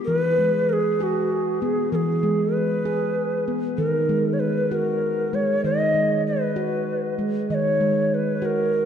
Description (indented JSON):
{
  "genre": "world meditative, meditative tuned percussion",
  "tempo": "65 BPM (dotted quarters)",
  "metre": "6/8",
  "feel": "straight",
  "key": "unclear",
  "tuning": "A4 = 442 Hz",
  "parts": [
    { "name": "handpan", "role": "arpeggios", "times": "0.0-8.9 s", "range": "D#3 to G#4", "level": "-24 LUFS", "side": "right 1 dB", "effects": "none" },
    { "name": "mellow hollow Native American-style cedar flute", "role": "melody", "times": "0.1-8.9 s", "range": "F#4 to D#5", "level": "-22 LUFS", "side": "equal", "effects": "ping-pong delay" }
  ],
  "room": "wet concert hall reverb, RT60 2.3 s",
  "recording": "dark, warm production",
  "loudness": "-20 LUFS",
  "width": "side -8 dB against mid",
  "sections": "0.1-8.9 A section",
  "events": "none",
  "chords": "0.1 E; 3.8 D#m"
}